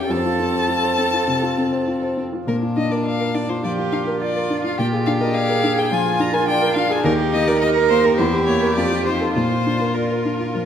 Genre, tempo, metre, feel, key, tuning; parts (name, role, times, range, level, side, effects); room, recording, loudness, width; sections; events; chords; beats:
quick classical-period movement for piano quartet; 104 BPM; 4/4; straight; Bb major; A4 = 442 Hz
clear violin; melody; 0.0-10.7 s; Bb4 to Bb5; -24 LUFS; left 4 dB
rich cello; second line; 0.0-10.7 s; F4 to Bb4; -24 LUFS; right 8 dB
rich violin; second line; 0.0-10.7 s; C4 to G4; -27 LUFS; left 1 dB
warm baby grand piano; accompaniment; 0.0-10.7 s; Eb2 to D5; -20 LUFS; equal
moderate scoring stage reverb, RT60 1.9 s; -17 LUFS; side -8 dB against mid
0.0-10.7 A section
0.1 F; 2.5 Bb; 4.8 Bb7; 7.0 Eb; 8.2 Edim7; 8.8 F7; 9.3 Bb
| 0.11 0.70 1.29 1.88 | 2.48 3.06 3.64 4.21 | 4.78 5.35 5.92 6.48 | 7.04 7.61 8.18 8.76 | 9.35 9.95 10.55